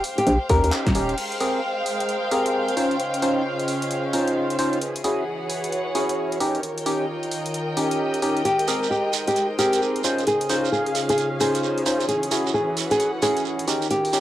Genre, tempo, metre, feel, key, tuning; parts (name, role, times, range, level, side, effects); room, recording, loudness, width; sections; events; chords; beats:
UK garage, two-step garage; 132 BPM; 4/4; swing 63% on 16ths; Ab major; A4 = 440 Hz
house drum kit; drums; 0.0-14.2 s; crash cymbal, handclaps, hi-hat, snare drum; -32 LUFS; right 1 dB
muted studio string section; texture; 0.0-14.2 s; Eb3 to G5; -28 LUFS; equal; sidechain pumping, cassette tape
nylon-string guitar; melody; 0.2-0.7, 8.4-14.2 s; G4 to Bb4; -23 LUFS; equal; cassette tape, analog delay
hollow knocking FM bass; bass; 0.3-1.1 s; Eb1 to Eb2; -22 LUFS; equal
percussive organ stab; stabs; 0.5-14.2 s; C4 to C5; -24 LUFS; equal; wide subtle chorus, cassette tape, tape echo
electronic kick drum; drums; 0.5-0.9 s; -22 LUFS; equal
airy breathy pad; sustained chords; 1.7-14.2 s; Db3 to G5; -32 LUFS; left 1 dB; chorus, sidechain pumping, cassette tape
shekere; percussion; 8.5-14.2 s; -29 LUFS; right 11 dB
wet booth ambience, RT60 0.2 s; home recording on cassette; -20 LUFS; side -13 dB against mid
0.0-1.2 A section; 1.2-14.2 B section
band accent 0.7; filter sweep on analog synth pad 1.2-14.2
0.0 Eb7; 1.2 Abmaj9; 2.8 Dbmaj9; 4.8 E69; 6.4 Eb7; 8.5 Abmaj9; 10.0 Dbmaj9; 12.1 E69; 13.7 Eb7
0.27 0.72 | 1.18 1.63 2.09 2.54 | 3.00 3.45 3.91 4.36 | 4.82 5.27 5.72 6.18 | 6.63 7.09 7.54 8.00 | 8.45 8.91 9.36 9.82 | 10.27 10.72 11.18 11.63 | 12.09 12.54 13.00 13.45 | 13.91